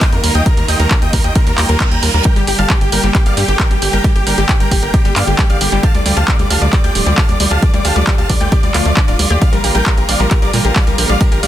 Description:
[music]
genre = uplifting trance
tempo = 134 BPM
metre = 4/4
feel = straight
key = G minor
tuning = A4 = 443 Hz
[part]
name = big supersaw lead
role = melody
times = 0.0-11.5 s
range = F4 to Bb5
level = -19 LUFS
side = right 1 dB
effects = sidechain pumping, digital delay
[part]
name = bright studio string section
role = sustained chords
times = 0.0-11.5 s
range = D3 to G4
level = -22 LUFS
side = right 1 dB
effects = sidechain pumping
[part]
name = electronic kick drum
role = drums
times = 0.0-11.3 s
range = none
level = -14 LUFS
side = equal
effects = none
[part]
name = punchy analog drum machine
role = drums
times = 0.0-11.5 s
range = handclaps, hi-hat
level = -19 LUFS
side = right 1 dB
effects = none
[part]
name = tight sequencer bass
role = bass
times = 0.1-11.5 s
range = D1 to Bb2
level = -16 LUFS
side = equal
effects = sidechain pumping
[part]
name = reverse cymbal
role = sound effects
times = 1.5-2.3 s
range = none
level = -23 LUFS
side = right 5 dB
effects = none
[part]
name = analog pluck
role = arpeggios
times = 2.3-11.5 s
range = G3 to G4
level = -21 LUFS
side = left 2 dB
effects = chorus, sidechain pumping, digital delay
[sound]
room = little or no reverb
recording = dense, heavily limited modern master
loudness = -11 LUFS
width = side -12 dB against mid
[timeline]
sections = 0.0-11.5 A section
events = reverse cymbal 1.5-2.3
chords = 0.0 Ebadd9; 2.3 Gm; 5.8 Dm; 9.4 Bb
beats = 0.01 | 0.46 0.91 1.36 1.80 | 2.25 2.70 3.15 3.60 | 4.04 4.49 4.94 5.39 | 5.83 6.28 6.73 7.18 | 7.62 8.07 8.52 8.97 | 9.42 9.86 10.31 10.76 | 11.21

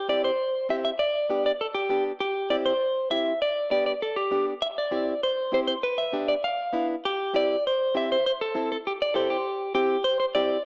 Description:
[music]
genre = latin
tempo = 199 BPM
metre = 4/4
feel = straight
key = C major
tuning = A4 = 441 Hz
[part]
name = clean electric guitar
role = melody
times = 0.0-10.6 s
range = G4 to F5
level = -24 LUFS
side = equal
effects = cassette tape
[part]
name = nylon-string guitar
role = accompaniment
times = 0.1-10.6 s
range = B3 to A4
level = -28 LUFS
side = equal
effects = cassette tape
[sound]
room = moderate spring reverb, RT60 1.3 s, studio reverb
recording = home recording on cassette, small speaker sound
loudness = -23 LUFS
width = side -33 dB against mid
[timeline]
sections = 0.0-9.5 A section; 9.5-10.7 B section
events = none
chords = 0.0 C; 1.0 G; 2.2 C; 3.4 G; 4.6 C; 5.8 G7; 7.0 C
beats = 0.09 0.39 0.69 | 0.99 1.30 1.60 1.90 | 2.21 2.51 2.81 3.11 | 3.42 3.72 4.02 4.32 | 4.62 4.93 5.23 5.53 | 5.83 6.13 6.44 6.74 | 7.04 7.34 7.64 7.95 | 8.25 8.55 8.85 9.15 | 9.45 9.76 10.06 10.36

